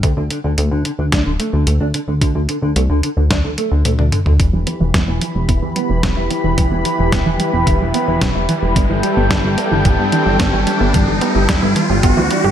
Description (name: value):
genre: synthwave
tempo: 110 BPM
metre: 4/4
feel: straight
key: unclear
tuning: A4 = 440 Hz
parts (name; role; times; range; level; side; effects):
- mellow electric guitar; riff; 0.0-12.5 s; D3 to G4; -22 LUFS; right 1 dB; lush chorus, low-pass filter, digital delay
- chorused synth bass; bass; 0.0-12.5 s; D1 to G2; -17 LUFS; equal; none
- detuned 8-bit digital drum machine; drums; 0.0-12.4 s; hi-hat, snare drum, toms; -21 LUFS; equal; none
- electronic kick drum; drums; 0.0-12.1 s; none; -18 LUFS; equal; none
- lush unison pad; sustained chords; 4.4-12.5 s; E3 to B5; -20 LUFS; equal; chorus, sidechain pumping
- wide unison pluck; arpeggios; 4.4-12.5 s; E3 to G4; -21 LUFS; right 3 dB; cassette tape, digital delay
- riser; sound effects; 6.0-12.5 s; none; -23 LUFS; equal; none
room: moderate recital hall reverb, RT60 1.4 s, digital ambience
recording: none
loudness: -13 LUFS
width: side -10 dB against mid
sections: 0.0-4.4 A section; 4.4-12.5 B section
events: drum fill 3.9-4.4; filter sweep on analog synth pad 4.4-12.5; filter sweep on synth arpeggio sound 4.4-12.5; filter sweep on clean electric guitar 4.4-12.5; riser 6.0-12.5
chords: 0.0 D5; 4.4 Em; 8.8 G6